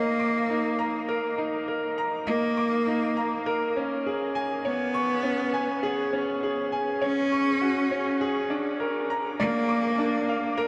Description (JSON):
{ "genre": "electronica", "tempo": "101 BPM", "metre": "4/4", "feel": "straight", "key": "unclear", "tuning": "A4 = 440 Hz", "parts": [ { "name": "clear cello", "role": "melody", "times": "0.0-10.7 s", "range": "Bb3 to Db4", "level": "-30 LUFS", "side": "equal", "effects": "diffuse ambient delay" }, { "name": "bright upright piano", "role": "riff", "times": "0.0-10.7 s", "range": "Db4 to D6", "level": "-29 LUFS", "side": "equal", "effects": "diffuse ambient delay" } ], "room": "wet huge ambient reverb, RT60 8.8 s", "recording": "dreamy mix soaked in reverb", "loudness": "-27 LUFS", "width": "mono", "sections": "0.0-10.7 A section", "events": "build-up 0.0-10.7", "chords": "0.0 Eb5; 3.8 Dbsus4; 8.5 Bb" }